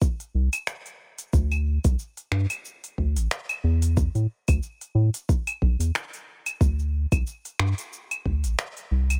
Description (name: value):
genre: organic downtempo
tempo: 91 BPM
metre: 4/4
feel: swing 56% on 16ths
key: unclear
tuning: A4 = 441 Hz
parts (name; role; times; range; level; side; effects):
- electronic kick drum; drums; 0.0-8.4 s; none; -25 LUFS; equal; none
- organic electronic drum kit; drums; 0.0-9.2 s; cabasa, claves, finger snaps, hi-hat; -32 LUFS; equal; none
- round analog bass; bass; 0.3-9.2 s; A1 to A2; -24 LUFS; equal; none
room: little or no reverb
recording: none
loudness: -26 LUFS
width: mono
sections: 0.0-9.2 A section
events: none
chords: none